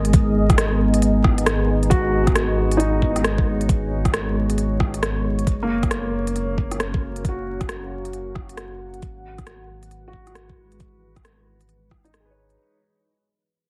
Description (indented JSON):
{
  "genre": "future garage",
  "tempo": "135 BPM",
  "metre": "4/4",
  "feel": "swing 62% on 16ths",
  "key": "unclear",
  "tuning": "A4 = 440 Hz",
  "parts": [
    { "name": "felt-muted upright piano", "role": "accompaniment", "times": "0.0-12.8 s", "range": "A#3 to C#5", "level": "-29 LUFS", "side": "equal", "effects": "vintage 12-bit sampler grit, sidechain pumping, low-pass filter, analog delay" },
    { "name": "deep dark ambient pad", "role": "sustained chords", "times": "0.0-12.6 s", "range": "E3 to F#5", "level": "-27 LUFS", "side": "equal", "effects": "chorus, built-in reverb, sidechain pumping" },
    { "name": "warm sub bass", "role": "bass", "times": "0.0-12.6 s", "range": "F#1 to G#1", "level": "-27 LUFS", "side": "equal", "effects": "sidechain pumping" },
    { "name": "organic electronic drum kit", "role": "drums", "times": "0.0-12.6 s", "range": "hi-hat, rim click", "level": "-28 LUFS", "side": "equal", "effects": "overdrive" },
    { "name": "electronic kick drum", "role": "drums", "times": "0.1-12.0 s", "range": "none", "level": "-22 LUFS", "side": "equal", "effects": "overdrive" }
  ],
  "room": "moderate lush hall reverb, RT60 1.6 s, digital ambience",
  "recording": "heavily compressed radio sound, multiband compression, vinyl crackle",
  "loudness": "-20 LUFS",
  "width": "mono",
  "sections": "0.0-12.6 A section",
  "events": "fade-out 0.0-12.6",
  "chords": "0.0 G#m; 5.5 F#; 9.0 Eadd9/G#"
}